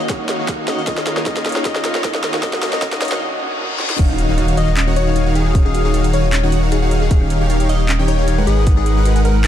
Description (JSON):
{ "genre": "future bass", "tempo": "154 BPM", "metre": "4/4", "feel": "swing 53% on 16ths, half-time", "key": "Eb minor", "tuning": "A4 = 440 Hz", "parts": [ { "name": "glassy wavetable pluck", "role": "melody", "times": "0.0-9.5 s", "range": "Ab4 to Eb5", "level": "-24 LUFS", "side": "left 5 dB", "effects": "chorus, sidechain pumping, ping-pong delay" }, { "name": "warm grand piano", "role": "accompaniment", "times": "0.0-4.0 s", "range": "Eb3 to Gb4", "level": "-30 LUFS", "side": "right 4 dB", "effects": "vintage 12-bit sampler grit, sidechain pumping, ping-pong delay" }, { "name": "warm studio string section", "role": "sustained chords", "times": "0.0-3.2 s", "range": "Eb3 to G4", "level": "-35 LUFS", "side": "left 3 dB", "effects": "none" }, { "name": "riser, reverse cymbal and impact", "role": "sound effects", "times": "1.3-5.5 s", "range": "none", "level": "-29 LUFS", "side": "left 1 dB", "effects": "none" }, { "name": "supersaw chords", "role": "riff", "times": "0.1-9.4 s", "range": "Eb3 to G5", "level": "-20 LUFS", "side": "equal", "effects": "sidechain pumping, low-pass filter" }, { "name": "electronic kick drum", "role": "drums", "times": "0.1-8.8 s", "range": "none", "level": "-16 LUFS", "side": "equal", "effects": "small room ambience" }, { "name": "trap drum kit", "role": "drums", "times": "0.1-9.5 s", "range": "crash cymbal, handclaps, hi-hat, snare drum", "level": "-23 LUFS", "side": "equal", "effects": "small room ambience" }, { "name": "airy dreamy lead", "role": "arpeggios", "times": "4.0-9.4 s", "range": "F5 to G5", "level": "-32 LUFS", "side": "equal", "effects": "none" }, { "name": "thumb-piano-like synth pluck", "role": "arpeggios", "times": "4.0-9.5 s", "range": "Db4 to Ab5", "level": "-29 LUFS", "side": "right 1 dB", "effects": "none" }, { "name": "saturated sub bass", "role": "bass", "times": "4.0-9.5 s", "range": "Eb1 to Ab1", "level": "-17 LUFS", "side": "equal", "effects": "sidechain pumping" } ], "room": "light reverb", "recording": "dark, warm production, high-pass filter", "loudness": "-14 LUFS", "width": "side -10 dB against mid", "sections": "0.0-4.0 A section; 4.0-9.5 B section", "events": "build-up 0.0-4.0; drum fill 0.0-3.2, 3.8; filter sweep 0.0-4.0; reverse cymbal 3.2-4.0; drop 4.0-9.5; impact 4.0-5.5", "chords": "0.0 Ebm7; 0.9 Eb7; 2.2 Abm7; 4.0 Ebm7; 7.1 Eb7; 8.5 Abm7" }